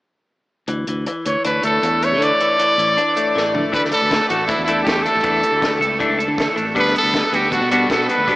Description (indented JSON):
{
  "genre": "indie rock",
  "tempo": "158 BPM",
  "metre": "4/4",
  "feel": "straight",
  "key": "D major",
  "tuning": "A4 = 440 Hz",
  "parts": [
    { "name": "overdriven electric guitar", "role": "riff", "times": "0.7-8.4 s", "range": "E3 to D4", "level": "-23 LUFS", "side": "left 2 dB", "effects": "none" },
    { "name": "modern bright fingered electric bass", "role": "bass", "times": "0.7-8.4 s", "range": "A1 to D3", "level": "-25 LUFS", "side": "equal", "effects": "none" },
    { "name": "compact cocktail drum kit", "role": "drums", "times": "0.7-8.4 s", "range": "hi-hat, kick drum, snare drum, toms", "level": "-25 LUFS", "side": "equal", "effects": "none" },
    { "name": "brilliant trumpet", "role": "melody", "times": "1.3-8.4 s", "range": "E4 to D5", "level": "-17 LUFS", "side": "equal", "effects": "none" },
    { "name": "cranked stack guitar", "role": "riff", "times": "3.7-8.4 s", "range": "E3 to A4", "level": "-23 LUFS", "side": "right 1 dB", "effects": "overdrive, lush chorus, diffuse ambient delay" }
  ],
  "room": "wet huge ambient reverb, RT60 7.8 s",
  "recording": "dreamy mix soaked in reverb, AM radio sound",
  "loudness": "-15 LUFS",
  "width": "side -18 dB against mid",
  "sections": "0.7-3.7 A section; 3.7-8.4 B section",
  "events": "drum fill 3.4-3.7",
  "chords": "0.7 Dsus2; 6.8 Gmaj7/D"
}